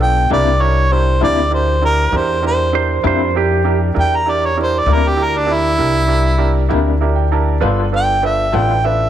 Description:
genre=slow blues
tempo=66 BPM (dotted quarters)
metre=12/8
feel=straight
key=unclear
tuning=A4 = 440 Hz
part: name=clear harmonica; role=melody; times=0.0-9.1 s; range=D4 to Bb5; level=-16 LUFS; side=right 1 dB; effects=overdrive
part: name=bright upright piano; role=accompaniment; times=0.0-9.1 s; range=B3 to A5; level=-20 LUFS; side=right 7 dB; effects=none
part: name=upright bass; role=bass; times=0.0-9.1 s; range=G1 to F2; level=-17 LUFS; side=left 1 dB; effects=none
part: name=electric guitar through a small old amp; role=accompaniment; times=0.3-8.7 s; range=C3 to A4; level=-22 LUFS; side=left 11 dB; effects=tremolo
part: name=clean lap steel guitar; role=second line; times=2.8-3.8 s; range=G4 to C5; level=-18 LUFS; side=right 6 dB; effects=none
room=light reverb, small room ambience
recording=1960s-style stereo with parts hard left and right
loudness=-13 LUFS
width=side -11 dB against mid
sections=0.0-9.1 A section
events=upright piano fill 6.7-7.6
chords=0.3 C9; 7.6 G9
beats=| 0.30 1.21 2.13 3.04 | 3.95 4.87 5.78 6.70 | 7.61 8.53

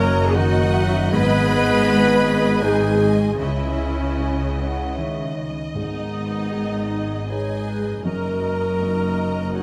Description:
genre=cinematic, emotional film score for orchestra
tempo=78 BPM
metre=3/4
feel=rubato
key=G# minor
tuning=A4 = 439 Hz
part: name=rich studio violin section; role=melody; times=0.0-9.6 s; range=D#5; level=-37 LUFS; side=equal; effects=none
part: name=hollow small flute group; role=second line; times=0.0-9.6 s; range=B4 to G#5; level=-33 LUFS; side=equal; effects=none
part: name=mellow clarinet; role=second line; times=0.0-9.6 s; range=B3 to G#4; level=-33 LUFS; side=equal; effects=none
part: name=rich studio violin section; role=second line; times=0.0-9.6 s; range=D#5 to B5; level=-35 LUFS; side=equal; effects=none
part: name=dark baby grand piano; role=accompaniment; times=0.0-9.6 s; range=C#2 to D#5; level=-30 LUFS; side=equal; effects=none
part: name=rich symphonic viola section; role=accompaniment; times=0.0-9.6 s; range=D#4 to B4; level=-27 LUFS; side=equal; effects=none
part: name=dark French horn section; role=sustained chords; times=0.0-9.6 s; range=C#3 to A#4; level=-28 LUFS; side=equal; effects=none
part: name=concert harp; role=arpeggios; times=0.0-9.6 s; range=F#2 to F#5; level=-35 LUFS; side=equal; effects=none
part: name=clear symphonic double bass section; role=bass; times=0.0-9.6 s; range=F#1 to C#2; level=-29 LUFS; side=equal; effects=none
part: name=warm symphonic cello section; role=bass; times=0.0-9.6 s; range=F#2 to C#3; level=-28 LUFS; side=equal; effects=none
part: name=timpani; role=percussion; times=5.7-6.9 s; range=G#2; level=-37 LUFS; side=equal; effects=none
room=moderate scoring stage reverb, RT60 1.8 s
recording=close, detailed microphones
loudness=-21 LUFS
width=mono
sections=0.0-9.6 A section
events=none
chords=0.0 D#m/F#; 1.1 G#m; 3.4 C#madd9; 5.7 G#m; 8.0 D#m/F#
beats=0.35 | 1.11 1.86 2.63 | 3.41 4.19 4.97 | 5.75 6.51 7.28 | 8.04 8.78 9.52

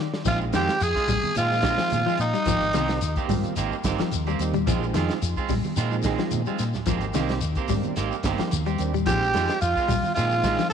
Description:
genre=afrobeat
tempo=109 BPM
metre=4/4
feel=swing 54% on 16ths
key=unclear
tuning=A4 = 437 Hz
part: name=combo organ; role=accompaniment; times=0.0-10.7 s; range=F3 to D5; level=-34 LUFS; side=right 11 dB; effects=none
part: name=clean electric guitar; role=arpeggios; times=0.0-10.7 s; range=Eb3 to G3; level=-30 LUFS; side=left 12 dB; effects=none
part: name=warm soul drum kit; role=drums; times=0.1-10.7 s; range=hi-hat, kick drum, snare drum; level=-32 LUFS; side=equal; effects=none
part: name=breathy tenor saxophone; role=melody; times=0.3-3.3, 9.1-10.7 s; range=Eb4 to Bb4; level=-24 LUFS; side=equal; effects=none
part: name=growling trumpet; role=second line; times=0.3-3.3, 9.1-10.7 s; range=Eb4 to Bb4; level=-32 LUFS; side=right 10 dB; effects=none
part: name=electric guitar at the edge of break-up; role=stabs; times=0.3-10.6 s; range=Eb3 to G4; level=-31 LUFS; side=right 9 dB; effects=spring reverb
part: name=fingered electric bass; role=bass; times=0.3-10.6 s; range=G1 to Bb2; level=-28 LUFS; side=left 1 dB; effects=none
part: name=congas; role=percussion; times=0.3-10.6 s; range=none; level=-33 LUFS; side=right 8 dB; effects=none
part: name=shekere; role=percussion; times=0.3-10.7 s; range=none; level=-35 LUFS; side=left 7 dB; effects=none
room=light reverb, studio reverb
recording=1960s-style stereo with parts hard left and right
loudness=-22 LUFS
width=side -7 dB against mid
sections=0.3-10.7 A section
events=break 0.0; transistor combo organ fill 0.0; drum fill 0.0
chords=0.3 Bb9sus4; 2.5 Abmaj9; 4.7 Bb9sus4; 6.9 Abmaj9; 9.1 Bb9sus4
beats=| 0.26 0.81 1.36 1.91 | 2.47 3.02 3.57 4.12 | 4.67 5.22 5.77 6.32 | 6.87 7.42 7.97 8.52 | 9.07 9.62 10.16 10.71

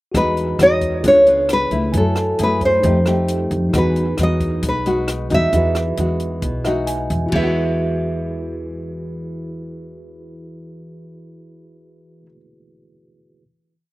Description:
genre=bossa nova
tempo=134 BPM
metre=4/4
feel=straight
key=E major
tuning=A4 = 440 Hz
part: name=mellow tine electric piano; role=accompaniment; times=0.1-13.4 s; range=D4 to G#5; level=-27 LUFS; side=right 2 dB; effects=medium stereo tremolo, slapback echo
part: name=nylon-string guitar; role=accompaniment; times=0.1-12.4 s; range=B2 to G#4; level=-24 LUFS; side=left 2 dB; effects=none
part: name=upright bass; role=bass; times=0.1-12.3 s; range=B1 to F#2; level=-22 LUFS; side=equal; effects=none
part: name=compact cocktail drum kit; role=drums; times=0.1-7.4 s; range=crash cymbal, hi-hat, kick drum, rim click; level=-28 LUFS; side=equal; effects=none
part: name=nylon-string guitar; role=melody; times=0.2-12.3 s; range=A4 to E5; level=-17 LUFS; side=equal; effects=none
room=little or no reverb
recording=recorded outdoors, with no room sound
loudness=-15 LUFS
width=side -18 dB against mid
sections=0.1-7.3 A section; 7.3-10.9 final chord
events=tine electric piano fill 6.4-7.3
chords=0.1 Emaj9; 1.0 C#7b9; 1.9 F#m9; 2.8 F9; 3.7 Emaj9; 7.3 Eadd9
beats=| 0.14 0.59 1.04 1.49 | 1.94 2.39 2.83 3.28 | 3.73 4.18 4.63 5.08 | 5.53 5.98 6.42 6.87 | 7.32 7.77 8.22 8.67 | 9.12 9.57 10.02 10.47

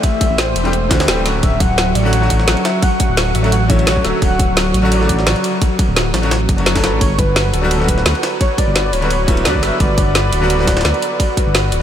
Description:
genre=liquid drum and bass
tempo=172 BPM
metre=4/4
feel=swing 53% on 16ths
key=D major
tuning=A4 = 442 Hz
part: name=warm velvety synth lead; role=melody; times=0.0-11.8 s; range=A4 to F#5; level=-22 LUFS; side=left 1 dB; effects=chorus, ping-pong delay
part: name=bright concert grand piano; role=accompaniment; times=0.0-11.8 s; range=C#3 to A4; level=-21 LUFS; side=left 1 dB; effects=ping-pong delay
part: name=lush unison pad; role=sustained chords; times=0.0-11.8 s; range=F#3 to C#6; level=-22 LUFS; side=equal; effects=chorus
part: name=drum and bass drum kit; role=drums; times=0.0-11.8 s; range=hi-hat, snare drum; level=-20 LUFS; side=equal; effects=none
part: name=electronic kick drum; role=drums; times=0.0-11.4 s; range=none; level=-16 LUFS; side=equal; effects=none
part: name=jungle sampler-style drum kit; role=drums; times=0.0-11.8 s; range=ride cymbal, snare drum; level=-24 LUFS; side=right 1 dB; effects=high-pass filter on cymbals, high-pass filter on snare
part: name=dark detuned saw bass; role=bass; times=0.3-11.8 s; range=D1 to D2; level=-18 LUFS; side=equal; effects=none
room=moderate huge ambient reverb, RT60 8.8 s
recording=dreamy mix soaked in reverb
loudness=-12 LUFS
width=side -10 dB against mid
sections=0.0-11.8 A section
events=kick drops out 1.1-1.4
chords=0.0 Am7; 1.3 Dmaj7; 7.0 Gmaj7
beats=| 0.04 0.38 0.73 1.08 | 1.43 1.78 2.13 2.48 | 2.83 3.17 3.52 3.87 | 4.22 4.57 4.92 5.27 | 5.62 5.96 6.31 6.66 | 7.01 7.36 7.71 8.06 | 8.41 8.76 9.10 9.45 | 9.80 10.15 10.50 10.85 | 11.20 11.55

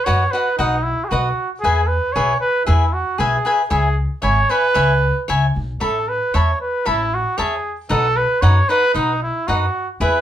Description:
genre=mexican folk, mariachi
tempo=115 BPM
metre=2/4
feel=straight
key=unclear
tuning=A4 = 440 Hz
part: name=clear trumpet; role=melody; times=0.0-10.2 s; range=D#4 to C#5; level=-19 LUFS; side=right 2 dB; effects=none
part: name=cavaquinho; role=accompaniment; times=0.1-10.2 s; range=D#4 to B5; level=-21 LUFS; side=left 2 dB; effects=none
part: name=upright bass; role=bass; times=0.1-10.2 s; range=G#1 to F#2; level=-19 LUFS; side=equal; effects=none
room=moderate studio reverb, RT60 0.5 s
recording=band playing live in one room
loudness=-16 LUFS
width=side -11 dB against mid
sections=0.0-10.2 A section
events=none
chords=0.0 B; 1.6 E; 3.7 C#m7; 5.8 Aadd9; 7.9 B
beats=0.07 | 0.58 1.11 | 1.63 2.16 | 2.68 3.20 | 3.72 4.24 | 4.76 5.29 | 5.81 6.34 | 6.86 7.38 | 7.90 8.42 | 8.94 9.47 | 10.01

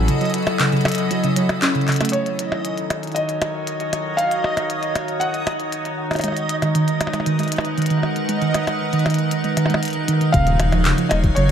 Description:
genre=IDM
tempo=117 BPM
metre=4/4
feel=straight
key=Eb minor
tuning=A4 = 440 Hz
part: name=felt-muted upright piano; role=melody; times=0.0-5.9, 10.3-11.5 s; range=A4 to Gb5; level=-25 LUFS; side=equal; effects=vintage 12-bit sampler grit, dub echo
part: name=icy glass pad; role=sustained chords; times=0.0-11.5 s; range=Eb3 to Ab5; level=-24 LUFS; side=left 2 dB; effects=chorus, built-in reverb
part: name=warbly dusty pluck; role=arpeggios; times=0.0-2.1, 6.2-11.5 s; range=Db3 to Db4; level=-21 LUFS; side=right 3 dB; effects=chorus, dub echo
part: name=dark detuned saw bass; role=bass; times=0.0-0.1, 10.3-11.5 s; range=Eb1 to Gb1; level=-19 LUFS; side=left 1 dB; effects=none
part: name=backwards swelling texture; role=texture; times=0.0-10.3 s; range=Eb5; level=-29 LUFS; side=right 2 dB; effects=built-in reverb
part: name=glitchy drum kit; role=drums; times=0.1-11.5 s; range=handclaps, hi-hat, percussion blips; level=-25 LUFS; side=equal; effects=overdrive, dub echo
part: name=electronic kick drum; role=drums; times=10.3-11.3 s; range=none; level=-19 LUFS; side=left 1 dB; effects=overdrive
room=moderate plate reverb, RT60 2.0 s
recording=echo-heavy mix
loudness=-18 LUFS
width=side -8 dB against mid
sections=0.0-2.1 A section; 2.1-10.3 B section; 10.3-11.5 C section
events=break 0.1-2.1; filter sweep on ambient pad 2.1-10.3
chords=0.0 Gbm9; 2.1 Ebm9; 6.2 Abm9; 10.1 Ebm9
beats=| 0.08 0.60 1.11 1.62 | 2.13 2.65 3.16 3.67 | 4.18 4.70 5.21 5.72 | 6.24 6.75 7.26 7.78 | 8.29 8.80 9.31 9.83 | 10.34 10.85 11.37

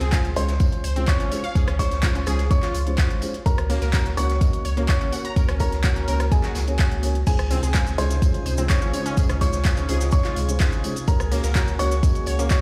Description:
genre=progressive house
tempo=126 BPM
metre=4/4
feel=straight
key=Db major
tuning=A4 = 441 Hz
part: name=dark grand piano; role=melody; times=0.0-12.6 s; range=Ab4 to Db6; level=-33 LUFS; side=equal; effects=tape echo
part: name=unison pluck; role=arpeggios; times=0.0-12.6 s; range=Bb3 to Bb5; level=-35 LUFS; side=equal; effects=sidechain pumping, tape echo
part: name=round analog bass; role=bass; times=0.0-12.6 s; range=Ab1 to Db2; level=-27 LUFS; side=equal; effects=sidechain pumping
part: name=deep house drum kit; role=drums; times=0.0-12.6 s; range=crash cymbal, handclaps, hi-hat, rim click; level=-33 LUFS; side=equal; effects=studio reverb, sidechain pumping on hats, sidechain pumping on cymbals
part: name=jazz brush drum kit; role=drums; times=0.0-12.6 s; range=hi-hat, snare drum, tambourine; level=-42 LUFS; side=equal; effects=none
part: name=felt-muted upright piano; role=stabs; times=0.1-12.6 s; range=Ab3 to Eb5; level=-33 LUFS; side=equal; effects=sidechain pumping, tape echo
part: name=electronic kick drum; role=drums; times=0.1-12.6 s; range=none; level=-23 LUFS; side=equal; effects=studio reverb
part: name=lush unison pad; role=sustained chords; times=7.3-12.6 s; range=C3 to Gb4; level=-36 LUFS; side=equal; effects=chorus, sidechain pumping
part: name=cabasa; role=percussion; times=7.3-12.6 s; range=none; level=-40 LUFS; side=equal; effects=none
part: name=drifting glass-harmonics texture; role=texture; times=7.9-12.6 s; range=Ab4 to Ab5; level=-42 LUFS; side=equal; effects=chorus, built-in reverb, sidechain pumping
room=little or no reverb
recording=played on a big sound system in a bare room, stone room reverb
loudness=-22 LUFS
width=mono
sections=0.0-12.6 A section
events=none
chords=0.0 Dbmaj7; 3.5 Gb; 7.3 Dbmaj7; 11.1 Gb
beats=0.13 0.60 1.08 | 1.55 2.03 2.51 2.98 | 3.46 3.94 4.41 4.89 | 5.36 5.84 6.32 6.79 | 7.27 7.75 8.22 8.70 | 9.17 9.65 10.13 10.60 | 11.08 11.55 12.03 12.51

